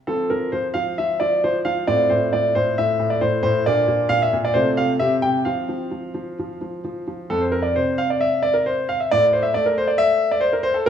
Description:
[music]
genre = classical-period piano sonatina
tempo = 134 BPM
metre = 4/4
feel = straight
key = F major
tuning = A4 = 441 Hz
[part]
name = clear concert grand piano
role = solo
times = 0.1-10.9 s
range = F2 to G5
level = -18 LUFS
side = equal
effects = none
[sound]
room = wet recital hall reverb, RT60 1.4 s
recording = small room ambience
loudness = -18 LUFS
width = side -8 dB against mid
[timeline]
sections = 0.0-7.3 A section; 7.3-10.9 B section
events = none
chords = 0.1 F5; 1.9 F/A; 3.7 Bb; 4.5 F/C; 5.0 C; 5.5 F5; 9.1 N.C.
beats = | 0.07 0.52 0.97 1.42 | 1.87 2.32 2.77 3.21 | 3.65 4.10 4.55 5.00 | 5.46 5.92 6.38 6.84 | 7.30 7.75 8.20 8.65 | 9.10 9.54 9.98 10.43 | 10.87

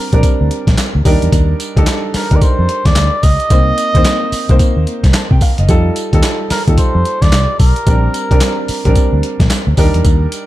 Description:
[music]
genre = R&B, new jack swing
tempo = 110 BPM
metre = 4/4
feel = swing 62% on 16ths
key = unclear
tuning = A4 = 440 Hz
[part]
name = trumpet with cup mute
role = melody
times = 0.0-9.2 s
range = Bb4 to Eb5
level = -19 LUFS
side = right 1 dB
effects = digital delay
[part]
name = warm baby grand piano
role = accompaniment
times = 0.0-10.5 s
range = G3 to A5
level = -19 LUFS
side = right 1 dB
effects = none
[part]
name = vintage muted fingered electric bass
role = bass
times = 0.1-10.2 s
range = F#1 to C3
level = -14 LUFS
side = equal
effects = none
[part]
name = boom bap sampler-style drum kit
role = drums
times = 0.1-10.5 s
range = handclaps, hi-hat, kick drum, snare drum, tambourine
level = -13 LUFS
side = equal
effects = none
[sound]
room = little or no reverb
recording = dark, warm production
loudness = -10 LUFS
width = side -15 dB against mid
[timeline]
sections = 0.0-10.5 A section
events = none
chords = 0.0 Bb69; 1.0 Ebmaj7; 3.5 Cm7; 5.7 F9; 7.9 Bb69; 9.8 Ebmaj7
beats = 0.23 0.78 | 1.32 1.87 2.41 2.96 | 3.50 4.05 4.59 5.14 | 5.69 6.23 6.78 7.32 | 7.87 8.41 8.96 9.50 | 10.05

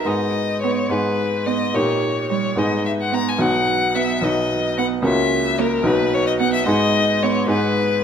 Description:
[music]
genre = quick classical-period movement for piano quartet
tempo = 73 BPM (dotted quarters)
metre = 6/8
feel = straight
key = G# minor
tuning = A4 = 440 Hz
[part]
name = rich violin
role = melody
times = 0.0-8.0 s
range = A#4 to A#5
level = -21 LUFS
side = left 4 dB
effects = none
[part]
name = bright baby grand piano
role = accompaniment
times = 0.0-8.0 s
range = B1 to G#4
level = -20 LUFS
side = equal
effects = none
[part]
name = clear cello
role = second line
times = 0.6-7.4 s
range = G3 to B3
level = -26 LUFS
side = right 9 dB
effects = none
[sound]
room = wet concert hall reverb, RT60 1.8 s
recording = none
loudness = -17 LUFS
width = side -7 dB against mid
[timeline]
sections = 0.1-8.0 A section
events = none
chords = 0.1 G#m; 1.7 D#7/A#; 2.6 G#m; 3.4 B; 5.0 F#7/C#; 5.9 B; 6.7 G#m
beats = | 0.07 0.90 | 1.74 2.58 | 3.40 4.23 | 5.05 5.86 | 6.68 7.50

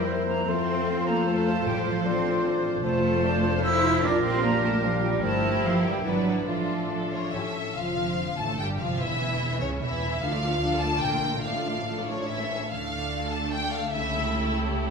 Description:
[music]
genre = classical, dramatic, fast romantic movement for symphony orchestra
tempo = 138-154 BPM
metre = 3/4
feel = rubato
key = D minor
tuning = A4 = 440 Hz
[part]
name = warm symphonic violin section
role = melody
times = 0.0-14.5 s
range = A4 to A5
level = -32 LUFS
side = left 2 dB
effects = none
[part]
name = silver concert flute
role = second line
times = 0.0-7.3 s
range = F5 to E6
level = -32 LUFS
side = right 2 dB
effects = none
[part]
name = warm clarinet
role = second line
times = 0.0-7.5 s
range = E4 to Bb4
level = -34 LUFS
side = left 3 dB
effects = none
[part]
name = warm oboe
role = second line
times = 0.0-7.4 s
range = Bb4 to D5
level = -34 LUFS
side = right 2 dB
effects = none
[part]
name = warm symphonic violin section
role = second line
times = 0.0-14.9 s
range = C#4 to D5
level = -37 LUFS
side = left 2 dB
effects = none
[part]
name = mellow bassoon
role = accompaniment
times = 0.0-7.5 s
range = A3 to F4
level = -31 LUFS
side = right 1 dB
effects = none
[part]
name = warm symphonic viola section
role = accompaniment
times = 0.0-14.9 s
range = C#3 to F4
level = -34 LUFS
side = right 3 dB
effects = none
[part]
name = mellow French horn section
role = sustained chords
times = 0.0-14.9 s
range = C#3 to Bb4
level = -34 LUFS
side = left 2 dB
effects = none
[part]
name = concert harp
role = arpeggios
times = 0.0-14.9 s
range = F2 to D5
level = -33 LUFS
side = left 8 dB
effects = none
[part]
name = dark symphonic double bass section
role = bass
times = 0.0-14.9 s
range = E1 to F2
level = -33 LUFS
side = right 2 dB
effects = none
[part]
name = warm symphonic cello section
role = bass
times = 0.0-14.9 s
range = C#2 to E4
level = -31 LUFS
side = right 2 dB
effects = none
[part]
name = timpani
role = percussion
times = 1.7-2.2, 12.7-13.3 s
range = A2 to D3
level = -39 LUFS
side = right 2 dB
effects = none
[sound]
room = wet recital hall reverb, RT60 1.3 s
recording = recorded in a church or concert hall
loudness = -23 LUFS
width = side -5 dB against mid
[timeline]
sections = 0.0-7.8 A section; 7.8-14.9 B section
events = none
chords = 0.5 F; 1.7 F/A; 2.8 F; 4.0 Bb6; 5.2 Edim/G; 6.0 E7/G#; 6.5 Dm/A; 7.3 A; 7.8 Dm/F; 9.0 A/E; 10.2 Dm; 11.0 Bbmaj7; 11.4 Dm/A; 12.3 A; 12.7 Dm; 13.9 A7/C#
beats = 0.07 | 0.47 0.87 1.27 | 1.66 2.05 2.44 | 2.83 3.23 3.63 | 4.02 4.42 4.83 | 5.23 5.64 6.05 | 6.47 6.91 7.33 | 7.76 8.18 8.60 | 9.00 9.41 9.82 | 10.22 10.62 11.03 | 11.45 11.87 12.29 | 12.71 13.13 13.54 | 13.95 14.35 14.75

